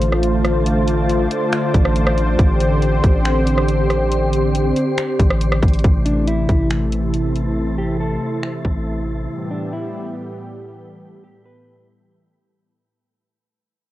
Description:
hip hop, atmospheric cloud-rap; 139 BPM; 4/4; half-time; A minor; A4 = 440 Hz
warm analog pad; sustained chords; 0.0-12.7 s; A2 to C5; -20 LUFS; equal; chorus, sidechain pumping, cassette tape
long sustained 808-style bass; bass; 0.0-9.3 s; A1; -20 LUFS; equal
trap drum kit; drums; 0.0-8.7 s; finger snaps, hi-hat, kick drum, rim click; -18 LUFS; equal; cassette tape
wind-like tuned noise texture; texture; 0.0-12.7 s; A3 to C6; -31 LUFS; left 1 dB; built-in reverb, cassette tape, plate reverb
mellow electric guitar; melody; 6.1-11.9 s; D4 to B4; -27 LUFS; equal; low-pass filter, cassette tape, tape echo
little or no reverb; home recording on cassette; -16 LUFS; side -15 dB against mid
0.0-5.8 A section; 5.8-12.7 B section
fade-out 5.8-12.7
0.0 F6/A; 2.4 Csus2/A; 5.8 Am; 9.3 Em/A

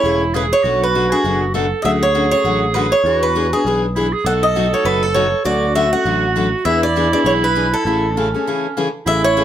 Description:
acoustic string swing (jazz manouche); 199 BPM; 4/4; swing 58% on 8ths; A major; A4 = 440 Hz
picked swing-style acoustic guitar; melody; 0.0-9.4 s; G#4 to F#5; -18 LUFS; right 1 dB
bright clarinet; second line; 0.0-9.4 s; C#4 to A4; -20 LUFS; right 4 dB
picked steel-string acoustic guitar; accompaniment; 0.0-9.4 s; B2 to G#4; -21 LUFS; left 4 dB
picked electric bass; bass; 0.0-9.4 s; E1 to E2; -22 LUFS; equal
moderate studio reverb, RT60 0.6 s; -14 LUFS; side -10 dB against mid
0.0-9.1 A section
break 8.5-9.1
0.0 Amaj7; 0.6 Bm7; 1.8 Dmaj7; 3.0 E9; 4.2 B7; 5.5 Dmaj7; 6.7 E7; 7.9 Amaj7

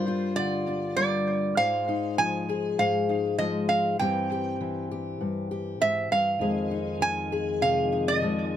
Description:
acoustic folk duo or small band; 99 BPM; 4/4; straight; F dorian; A4 = 440 Hz
lap resonator guitar; melody; 0.0-8.6 s; C5 to Ab5; -26 LUFS; right 3 dB; tape echo
fingerpicked steel-string acoustic guitar; accompaniment; 0.0-8.6 s; F2 to Ab4; -28 LUFS; left 4 dB
tonewheel organ; sustained chords; 6.4-8.6 s; F2 to Ab3; -33 LUFS; right 2 dB; slow rotary speaker, overdrive, chorus vibrato
light reverb; close, detailed microphones; -24 LUFS; side -10 dB against mid
0.0-8.6 A section
0.0 Gm7; 1.6 Fm7/Ab; 4.0 C/G; 6.4 Fm7

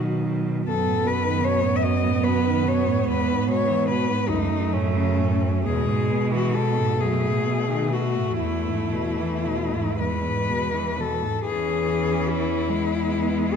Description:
classical, lyrical piece for cello ensemble; 36-53 BPM (dotted quarters); 6/8; rubato; E major; A4 = 440 Hz
clear cello; second line; 0.0-13.6 s; F#3 to C#4; -27 LUFS; right 6 dB
rich cello; accompaniment; 0.0-13.6 s; C#2 to G#3; -27 LUFS; left 2 dB
rich cello; bass; 0.0-13.6 s; E2 to B2; -27 LUFS; right 2 dB
rich cello; melody; 0.7-13.6 s; C#4 to E5; -25 LUFS; left 4 dB
moderate scoring stage reverb, RT60 2.1 s; dark, warm production; -21 LUFS; side -7 dB against mid
0.0-11.5 A section; 11.5-13.6 B section
0.0 B; 0.7 B7/F#; 3.1 E; 4.3 F#m/C#; 5.7 E; 7.0 B7/F#; 8.4 E

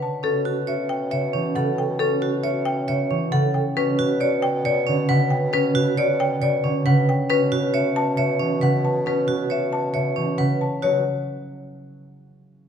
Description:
classical, minimalist pattern music; 136 BPM; 4/4; straight; B minor; A4 = 440 Hz
marimba with medium hard mallets; melody; 0.0-11.0 s; A4 to A5; -25 LUFS; left 6 dB
concert harp; accompaniment; 0.0-11.0 s; C#3 to C#4; -24 LUFS; right 1 dB
vibraphone with hard mallets; arpeggios; 0.0-11.0 s; C#4 to C#5; -26 LUFS; right 8 dB
warm bassoon; bass; 0.0-11.0 s; B2; -27 LUFS; equal
moderate recital hall reverb, RT60 1.9 s; -19 LUFS; side -8 dB against mid
0.0-10.8 A section; 10.8-12.6 B section
0.2 A7/B; 3.8 Gmaj7/B; 7.3 F#m7/B; 10.8 B5

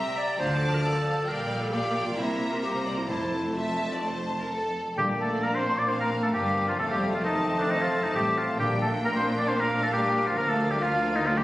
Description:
quick classical-period movement for symphony orchestra; 133 BPM; 4/4; rubato; F major, Bb major from 5.0 s; A4 = 440 Hz
rich studio violin section; melody; 0.0-11.4 s; D5 to Bb5; -35 LUFS; left 1 dB
clear studio violin section; second line; 0.0-11.4 s; A3 to F6; -35 LUFS; equal
warm clarinet; second line; 0.0-11.4 s; C4 to E5; -34 LUFS; equal
warm studio viola section; accompaniment; 0.0-11.4 s; F3 to C4; -36 LUFS; right 1 dB
clear studio cello section; bass; 0.4-11.4 s; D2 to D3; -33 LUFS; equal
rich studio double bass section; bass; 0.4-11.4 s; F1 to D2; -35 LUFS; equal
small flute group; second line; 5.0-11.4 s; D5 to D6; -34 LUFS; equal
warm oboe; second line; 5.0-11.4 s; D4 to D5; -27 LUFS; equal
mellow bassoon; accompaniment; 5.0-11.4 s; A3 to Bb3; -33 LUFS; equal
mellow French horn section; sustained chords; 5.0-11.4 s; D3 to D4; -33 LUFS; left 1 dB
timpani; percussion; 5.0-9.2 s; F2 to Bb2; -40 LUFS; equal
wet recital hall reverb, RT60 1.3 s; recorded on a phone in the room, studio reverb, compression; -24 LUFS; side -16 dB against mid
0.0-5.0 A section; 5.0-11.4 B section
0.4 Dm; 1.3 Gm7/Bb; 2.2 C7; 3.1 F; 5.0 Bb; 6.8 F; 8.6 Bb; 10.4 Bb/D

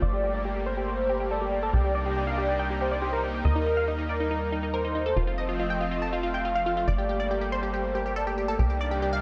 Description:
trance; 140 BPM; 4/4; straight; G minor; A4 = 439 Hz
supersaw stab; melody; 0.0-9.2 s; Eb4 to A5; -32 LUFS; equal; low-pass filter, tape echo
warm velvety synth lead; second line; 0.0-9.2 s; Bb4 to F5; -33 LUFS; equal; chorus, tape echo
lush unison pad; sustained chords; 0.0-9.2 s; C3 to Eb4; -36 LUFS; equal; chorus
tight sequencer bass; bass; 0.0-9.2 s; F1 to Eb2; -32 LUFS; equal
moderate lush hall reverb, RT60 3.0 s; dark, warm production; -27 LUFS; mono
0.0-9.2 A section
filter sweep on supersaw synth 0.0-9.2
0.0 Gmadd9; 1.7 Cm7; 3.5 Eb; 5.2 F; 6.9 Gmadd9; 8.6 Cm7

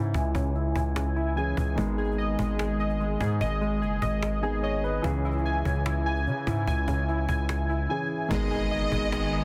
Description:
hip hop, trap; 147 BPM; 4/4; half-time; G# minor; A4 = 440 Hz
dark grand piano; accompaniment; 0.0-9.4 s; D#3 to G#5; -36 LUFS; equal; low-pass filter
warbly lo-fi synth keys; arpeggios; 0.0-9.4 s; C#3 to G#5; -31 LUFS; equal; chorus, low-pass filter, tape echo
distorted 808-style bass; bass; 0.0-9.4 s; F#1 to C#3; -31 LUFS; equal; distortion
cajon; drums; 0.1-9.4 s; -38 LUFS; equal
warm studio violin section; second line; 8.3-9.4 s; D#5; -34 LUFS; equal
warm studio string section; sustained chords; 8.3-9.4 s; D#3 to G#4; -36 LUFS; equal
impact; sound effects; 8.3-9.4 s; -38 LUFS; equal
light reverb, small room reverb; dense, heavily limited modern master; -27 LUFS; mono
0.0-8.3 A section; 8.3-9.4 B section
filter sweep 0.0-1.8; impact 8.3-9.4
0.0 C#m; 1.8 G#m; 5.0 C#m; 8.3 G#m

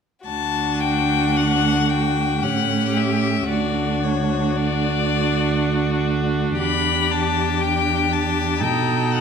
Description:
classical, slow romantic movement for string quartet; 55-60 BPM; 3/4; rubato; D major; A4 = 440 Hz
rich violin; melody; 0.3-9.2 s; C#5 to B5; -23 LUFS; left 11 dB
rich violin; second line; 0.3-9.2 s; F#4 to A4; -26 LUFS; left 5 dB
warm viola; accompaniment; 0.3-9.2 s; C#4 to D#4; -24 LUFS; right 2 dB
dark cello; bass; 0.3-9.2 s; D2 to B2; -22 LUFS; right 4 dB
wet recital hall reverb, RT60 1.7 s; -18 LUFS; side -6 dB against mid
0.3-9.2 A section
0.3 D; 2.4 A7; 3.5 D; 6.6 Em7; 8.6 B7

